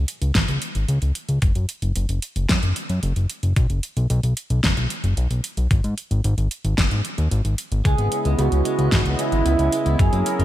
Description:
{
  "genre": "synthwave",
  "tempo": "112 BPM",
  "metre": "4/4",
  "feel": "straight",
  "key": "unclear",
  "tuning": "A4 = 440 Hz",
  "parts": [
    { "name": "fat analog bass", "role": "bass", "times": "0.0-10.4 s", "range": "F#1 to G#2", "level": "-20 LUFS", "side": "equal", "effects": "none" },
    { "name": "pop drum kit", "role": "drums", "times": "0.1-10.4 s", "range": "hi-hat, snare drum", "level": "-26 LUFS", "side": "equal", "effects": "none" },
    { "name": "electronic kick drum", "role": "drums", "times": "0.3-10.1 s", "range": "none", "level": "-20 LUFS", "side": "equal", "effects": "overdrive" },
    { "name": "warm analog pad", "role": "sustained chords", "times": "7.8-10.4 s", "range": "C#3 to D#5", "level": "-25 LUFS", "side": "equal", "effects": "chorus, sidechain pumping" },
    { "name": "expressive portamento lead", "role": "melody", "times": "7.9-10.4 s", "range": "E4 to G#4", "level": "-24 LUFS", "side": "right 4 dB", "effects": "wide subtle chorus, ping-pong delay" },
    { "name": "electric guitar at the edge of break-up", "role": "arpeggios", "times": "7.9-10.4 s", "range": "F#3 to C#4", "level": "-30 LUFS", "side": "right 4 dB", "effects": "digital delay" }
  ],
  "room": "light reverb",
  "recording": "bright 1980s-style digital production",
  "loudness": "-19 LUFS",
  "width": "side -13 dB against mid",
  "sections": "0.0-10.4 A section",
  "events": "none",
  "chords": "0.0 C#5; 1.4 N.C.; 3.6 B5; 5.7 G#5; 7.8 C#m7",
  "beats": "0.35 0.89 | 1.42 1.96 2.49 3.03 | 3.56 4.10 4.64 5.17 | 5.71 6.24 6.78 7.31 | 7.85 8.39 8.92 9.46 | 9.99"
}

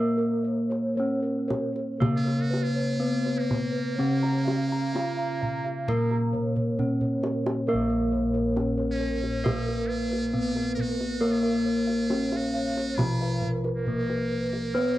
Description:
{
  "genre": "Javanese gamelan",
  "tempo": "67 BPM",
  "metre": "4/4",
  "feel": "uneven beats",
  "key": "Bb pelog",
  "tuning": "A4 = 438 Hz",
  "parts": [
    { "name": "gamelan-type bronze metallophone", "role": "melody", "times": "0.0-15.0 s", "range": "Bb3 to Bb4", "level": "-30 LUFS", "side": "equal", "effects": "cassette tape" },
    { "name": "gamelan-type bronze metallophone", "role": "accompaniment", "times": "0.0-15.0 s", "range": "Db3-30c to Cb4+20c", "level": "-30 LUFS", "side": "equal", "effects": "cassette tape" },
    { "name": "gamelan-type bronze metallophone", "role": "arpeggios", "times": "0.0-15.0 s", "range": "Bb4 to Bb5", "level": "-36 LUFS", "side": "right 3 dB", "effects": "cassette tape, plate reverb" },
    { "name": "gamelan-type bossed gongs", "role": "bass", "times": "0.0-15.0 s", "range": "Bb1 to Cb5+20c", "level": "-30 LUFS", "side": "equal", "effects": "none" },
    { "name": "gamelan-type bossed gongs", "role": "arpeggios", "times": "0.2-15.0 s", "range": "Bb4 to Bb5", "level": "-35 LUFS", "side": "left 3 dB", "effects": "cassette tape, plate reverb" },
    { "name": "kendang", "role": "percussion", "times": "0.7-14.6 s", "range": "none", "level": "-31 LUFS", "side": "right 1 dB", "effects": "none" },
    { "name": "trumpet with metal mute", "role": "second line", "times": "2.2-15.0 s", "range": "Bb3 to Bb4", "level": "-36 LUFS", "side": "right 2 dB", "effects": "cassette tape" }
  ],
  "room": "wet studio reverb, RT60 0.6 s",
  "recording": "home recording on cassette",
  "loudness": "-24 LUFS",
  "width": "side -15 dB against mid",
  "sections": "0.0-7.7 A section; 7.7-15.0 B section",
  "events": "drum fill 6.6-7.7",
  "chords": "none",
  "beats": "0.97 2.00 3.01 | 3.99 4.95 5.88 6.80 | 7.69 8.57 9.45 10.34 | 11.22 12.10 12.98 13.87 | 14.75"
}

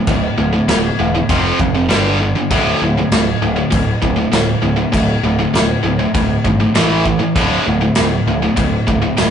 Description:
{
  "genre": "heavy metal",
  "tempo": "99 BPM",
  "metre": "4/4",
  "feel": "straight",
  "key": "D minor",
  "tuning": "A4 = 437 Hz",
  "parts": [
    { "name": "tight distorted guitar", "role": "riff", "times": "0.0-9.3 s", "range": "D2 to A3", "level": "-15 LUFS", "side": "equal", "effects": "distortion" },
    { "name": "growling picked electric bass", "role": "bass", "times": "0.1-9.3 s", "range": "D1 to A1", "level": "-19 LUFS", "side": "equal", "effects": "overdrive" },
    { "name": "modern studio drum kit", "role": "drums", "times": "0.1-9.3 s", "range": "crash cymbal, kick drum, snare drum", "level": "-18 LUFS", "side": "equal", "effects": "none" }
  ],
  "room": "moderate stone room reverb, RT60 0.9 s",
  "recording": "rough rehearsal-room recording, warm saturation, nothing above 10.6 kHz",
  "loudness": "-13 LUFS",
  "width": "side -8 dB against mid",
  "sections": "0.0-9.3 A section",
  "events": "none",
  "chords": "0.0 D5; 1.3 F5; 1.9 G5; 2.5 D5; 6.8 A5; 7.4 D5",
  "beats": "| 0.07 0.68 1.29 1.90 | 2.50 3.11 3.72 4.33 | 4.93 5.54 6.15 6.76 | 7.36 7.97 8.58 9.19"
}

